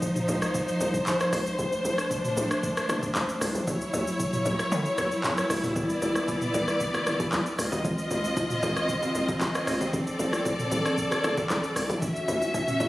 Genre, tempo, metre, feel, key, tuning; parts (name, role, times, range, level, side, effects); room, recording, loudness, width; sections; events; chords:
amapiano; 115 BPM; 4/4; straight; A4 = 440 Hz
warm studio string section; sustained chords; 0.0-12.9 s; F3 to E5; -27 LUFS; equal
hollow log drum bass; bass; 0.0-12.9 s; F1 to D3; -33 LUFS; equal
smooth R&B drum kit; drums; 0.0-12.9 s; handclaps, hi-hat, kick drum, rim click, shaker, toms; -31 LUFS; equal
congas and bongos; percussion; 5.8-12.9 s; -34 LUFS; equal
light reverb, digital ambience; recorded on a phone in the room, studio reverb; -25 LUFS; side -17 dB against mid
0.0-12.9 A section
kick muted 4.7-5.8
0.0 Dbmaj9; 1.6 Bbmaj9; 3.7 Dmaj9; 5.8 Cmaj9; 7.6 Dbmaj9; 9.9 Bbmaj9; 12.0 Dmaj9